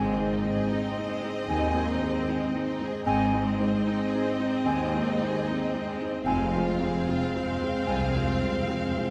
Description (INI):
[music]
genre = cinematic, emotional film score for orchestra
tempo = 75 BPM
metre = 4/4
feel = rubato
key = unclear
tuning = A4 = 440 Hz
[part]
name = warm symphonic violin section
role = melody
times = 0.0-9.1 s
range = Eb5 to F5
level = -38 LUFS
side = equal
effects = none
[part]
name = mellow silver concert flute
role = second line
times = 0.0-8.2 s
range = Ab5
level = -35 LUFS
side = equal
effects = none
[part]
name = rich symphonic violin section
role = second line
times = 0.0-9.1 s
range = Ab3 to Ab4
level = -41 LUFS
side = equal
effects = none
[part]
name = warm clarinet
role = second line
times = 0.0-8.2 s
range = C4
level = -38 LUFS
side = equal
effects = none
[part]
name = felt-muted upright piano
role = accompaniment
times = 0.0-9.1 s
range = C2 to F4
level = -34 LUFS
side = equal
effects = none
[part]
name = rich symphonic viola section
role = accompaniment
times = 0.0-9.1 s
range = C4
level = -37 LUFS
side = equal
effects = none
[part]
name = mellow French horn section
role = sustained chords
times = 0.0-9.1 s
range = Ab3 to C4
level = -35 LUFS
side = equal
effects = none
[part]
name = concert harp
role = arpeggios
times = 0.0-9.1 s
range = F2 to C5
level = -41 LUFS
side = equal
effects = none
[part]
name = clear symphonic double bass section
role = bass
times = 0.0-8.5 s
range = F1 to Eb2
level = -38 LUFS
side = equal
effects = none
[part]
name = warm symphonic cello section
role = bass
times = 0.0-8.5 s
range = C2 to Ab2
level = -36 LUFS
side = equal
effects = none
[part]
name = timpani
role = percussion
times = 6.2-9.1 s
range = F2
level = -37 LUFS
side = equal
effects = none
[sound]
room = moderate scoring stage reverb, RT60 1.9 s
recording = none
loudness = -27 LUFS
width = mono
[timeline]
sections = 0.0-9.1 A section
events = timpani fill 6.3-9.1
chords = 0.0 Ab; 6.3 Fm